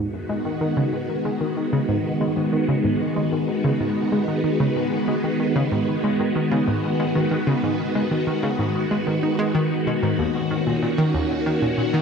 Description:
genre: ambient, sequencer-driven space music.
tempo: 94 BPM.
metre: 4/4.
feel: straight.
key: unclear.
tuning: A4 = 441 Hz.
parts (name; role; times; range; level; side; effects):
phased string machine; sustained chords; 0.0-12.0 s; Eb3 to Gb4; -22 LUFS; equal; ensemble chorus, phaser.
analog pluck; riff; 0.0-12.0 s; Eb2 to Eb4; -24 LUFS; equal; chorus, ping-pong delay.
room: wet concert hall reverb, RT60 2.3 s.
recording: cassette tape.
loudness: -20 LUFS.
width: side -6 dB against mid.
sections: 0.0-12.0 A section.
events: none.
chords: 0.0 Abm7; 10.2 Ebm7.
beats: 0.61 1.25 1.89 | 2.52 3.16 3.80 4.44 | 5.08 5.72 6.36 6.99 | 7.63 8.27 8.91 9.55 | 10.19 10.82 11.46.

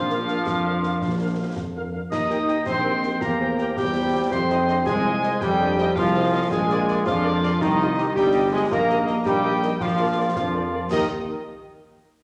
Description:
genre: military-style march for wind band.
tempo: 109 BPM (dotted quarters).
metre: 6/8.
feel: straight.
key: Eb major.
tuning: A4 = 441 Hz.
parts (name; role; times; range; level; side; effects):
bright wooden piccolo; second line; 0.0-11.1 s; Eb5 to Eb6; -32 LUFS; equal; none.
clear euphonium; second line; 0.0-10.6 s; C4 to Ab4; -35 LUFS; equal; none.
mellow woodwind section; second line; 0.0-11.1 s; Eb4 to Eb5; -29 LUFS; equal; none.
dark trombone section; sustained chords; 0.0-11.1 s; Eb3 to Eb4; -27 LUFS; equal; none.
dark tuba; bass; 0.0-11.1 s; G1 to F2; -29 LUFS; equal; none.
clear trumpet section; melody; 0.1-11.1 s; D5 to G5; -38 LUFS; equal; none.
mellow French horn section; accompaniment; 0.1-11.1 s; D4 to C5; -34 LUFS; equal; none.
concert snare drum, concert bass drum and clash cymbals; drums; 0.1-11.1 s; none; -37 LUFS; equal; none.
room: wet recital hall reverb, RT60 1.5 s.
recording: none.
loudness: -22 LUFS.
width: mono.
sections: 0.0-10.9 A section; 10.9-12.0 B section.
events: none.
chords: 0.0 Bb; 2.1 Eb; 3.2 C7/E; 4.3 Fm7; 6.5 Bb7; 7.6 Cm; 8.7 Eb/Bb; 9.8 Bb7; 10.9 Eb.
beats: 0.46 | 1.01 1.56 | 2.11 2.66 | 3.21 3.76 | 4.31 4.86 | 5.41 5.96 | 6.51 7.06 | 7.61 8.16 | 8.71 9.26 | 9.81 10.36 | 10.91.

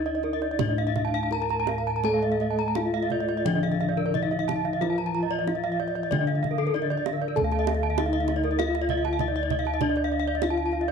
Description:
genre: Balinese gamelan.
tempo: 83-98 BPM.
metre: 4/4.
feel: straight.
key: D pelog.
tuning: A4 = 440 Hz.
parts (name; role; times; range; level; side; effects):
gamelan-type bronze metallophone; melody; 0.0-10.9 s; D4 to Bb4-20c; -31 LUFS; left 2 dB; none.
gamelan-type bronze metallophone; arpeggios; 0.0-10.9 s; A4-30c to Bb5-20c; -30 LUFS; left 10 dB; none.
gamelan-type bossed gongs; bass; 0.0-10.9 s; D2 to A4-30c; -28 LUFS; left 1 dB; none.
gamelan-type bronze metallophone; arpeggios; 0.1-10.9 s; Bb4-20c to Bb5-20c; -30 LUFS; right 11 dB; none.
kendang; percussion; 0.2-10.9 s; none; -34 LUFS; right 10 dB; none.
gamelan-type bronze metallophone; accompaniment; 2.0-7.4 s; D3 to A3-30c; -33 LUFS; right 1 dB; none.
room: moderate echo chamber reverb, RT60 1.3 s, studio reverb.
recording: 1960s-style stereo with parts hard left and right.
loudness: -23 LUFS.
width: side -6 dB against mid.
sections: 0.0-7.4 A section; 7.4-10.9 B section.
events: none.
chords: none.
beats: 0.60 1.32 | 2.04 2.76 3.46 4.14 | 4.81 5.47 6.11 6.74 | 7.36 7.97 8.59 9.20 | 9.81 10.43.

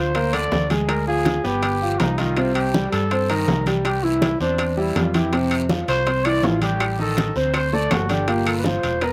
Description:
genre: Afro-Cuban jazz.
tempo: 162 BPM.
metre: 4/4.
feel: straight.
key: G minor.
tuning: A4 = 438 Hz.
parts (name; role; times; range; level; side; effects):
growling trumpet; melody; 0.0-9.1 s; D4 to D5; -27 LUFS; equal; none.
bright upright piano; accompaniment; 0.0-9.1 s; Bb2 to C5; -26 LUFS; equal; slapback echo.
fretless electric bass; bass; 0.0-9.1 s; E1 to G2; -28 LUFS; equal; none.
timbales; percussion; 0.1-9.1 s; none; -31 LUFS; equal; slapback echo.
bongos; percussion; 0.2-9.1 s; none; -32 LUFS; equal; none.
congas; percussion; 0.2-9.1 s; none; -28 LUFS; equal; none.
guiro; percussion; 0.2-9.1 s; none; -39 LUFS; equal; none.
claves; percussion; 5.5-8.6 s; none; -33 LUFS; equal; none.
room: little or no reverb.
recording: recorded outdoors, with no room sound.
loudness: -21 LUFS.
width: mono.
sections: 0.0-9.1 A section.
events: none.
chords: 0.0 Gm7 (rootless); 0.9 Ddim; 1.6 Gaug7; 2.4 Cm7; 3.8 Cadd9; 5.3 Fmaj9; 6.8 Am7b5; 7.5 D5; 8.3 Gm7.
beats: 0.16 0.53 | 0.89 1.26 1.63 2.00 | 2.37 2.74 3.11 3.48 | 3.85 4.22 4.59 4.96 | 5.33 5.69 6.06 6.43 | 6.80 7.17 7.54 7.91 | 8.28 8.65 9.02.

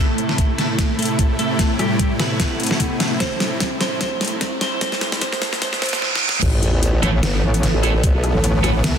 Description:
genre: heavy wobble dubstep.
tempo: 149 BPM.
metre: 4/4.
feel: swing 55% on 16ths, half-time.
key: A minor.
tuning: A4 = 442 Hz.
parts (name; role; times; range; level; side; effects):
twelve-string electric guitar; melody; 0.0-6.0 s; G3 to C5; -24 LUFS; right 1 dB; low-pass filter, digital delay.
supersaw chords; sustained chords; 0.0-9.0 s; A2 to E4; -25 LUFS; equal; sidechain pumping.
riser, reverse cymbal and sub drop; sound effects; 0.0-8.0 s; none; -27 LUFS; right 2 dB; none.
warbly tape-like pad; texture; 0.0-9.0 s; A4 to B5; -34 LUFS; right 4 dB; none.
dubstep drum kit; drums; 0.2-8.9 s; crash cymbal, hi-hat, rim click, snare drum; -22 LUFS; left 1 dB; overdrive.
electronic kick drum; drums; 0.4-8.1 s; none; -20 LUFS; equal; none.
formant-sweep wobble bass; bass; 6.4-8.3 s; G1 to B1; -19 LUFS; equal; chorus, overdrive.
high-gain distorted guitar; stabs; 7.0-8.7 s; A3 to A4; -26 LUFS; right 3 dB; distortion, digital delay.
metallic wobble bass; bass; 7.0-9.0 s; A1 to C2; -18 LUFS; equal; chorus, overdrive.
room: light reverb.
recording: dense, heavily limited modern master, high-pass filter.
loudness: -17 LUFS.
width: side -8 dB against mid.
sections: 0.0-6.4 A section; 6.4-9.0 B section.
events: build-up 0.0-6.4; drum fill 0.0-6.0, 6.0-6.4; riser 0.0-6.0; filter sweep 0.0-6.4; reverse cymbal 5.6-6.4; drop 6.4-9.0; impact 6.4-8.0.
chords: 0.0 Amadd9; 6.4 Asus2.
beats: 0.38 0.79 1.19 | 1.59 1.99 2.40 2.80 | 3.20 3.60 4.01 4.41 | 4.81 5.22 5.62 6.02 | 6.42 6.83 7.23 7.63 | 8.03 8.44 8.84.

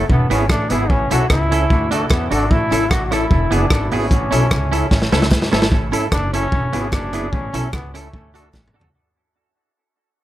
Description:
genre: ska.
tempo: 149 BPM.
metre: 4/4.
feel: straight.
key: A major.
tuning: A4 = 440 Hz.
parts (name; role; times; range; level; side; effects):
brilliant trombone; melody; 0.0-8.7 s; A3 to F#4; -23 LUFS; left 1 dB; dub echo.
semi-hollow electric guitar; accompaniment; 0.0-8.9 s; B3 to A4; -24 LUFS; right 5 dB; spring reverb, dub echo.
tonewheel organ; stabs; 0.0-8.9 s; B3 to A4; -25 LUFS; left 2 dB; slow rotary speaker, dub echo.
upright bass; bass; 0.0-8.9 s; E1 to E2; -21 LUFS; equal; none.
crunchy breakbeat drum kit; drums; 0.1-8.9 s; hi-hat, kick drum, rim click, snare drum, toms; -19 LUFS; equal; none.
group handclap; percussion; 0.5-8.6 s; none; -39 LUFS; right 2 dB; none.
room: little or no reverb.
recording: none.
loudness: -15 LUFS.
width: side -14 dB against mid.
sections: 0.0-5.7 A section; 5.7-8.9 B section.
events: drum fill 4.9-5.7, 8.5-8.9; fade-out 5.7-8.9.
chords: 0.1 E; 0.9 A; 1.7 D; 2.5 A; 3.3 E; 4.1 A; 6.5 E; 7.3 A; 8.1 D.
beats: 0.09 0.49 | 0.90 1.30 1.70 2.10 | 2.50 2.91 3.31 3.71 | 4.11 4.51 4.92 5.32 | 5.72 6.12 6.52 6.93 | 7.33 7.73 8.13 8.53.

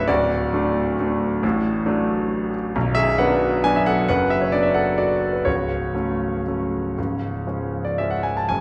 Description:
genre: classical, piano waltz.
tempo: 112-145 BPM.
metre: 3/4.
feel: rubato.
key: unclear.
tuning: A4 = 437 Hz.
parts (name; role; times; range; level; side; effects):
clear concert grand piano; solo; 0.0-8.6 s; B0 to A5; -21 LUFS; equal; none.
room: wet recital hall reverb, RT60 1.4 s.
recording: heard from further back in the room.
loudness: -22 LUFS.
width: mono.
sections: 0.0-8.6 A section.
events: none.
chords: 0.1 D; 2.8 Bm; 5.5 F#m/C#; 7.0 C#.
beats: | 0.08 0.53 0.99 | 1.43 1.87 2.32 | 2.76 3.19 3.64 | 4.08 4.52 4.98 | 5.46 5.95 6.47 | 6.98 7.46 7.98 | 8.50.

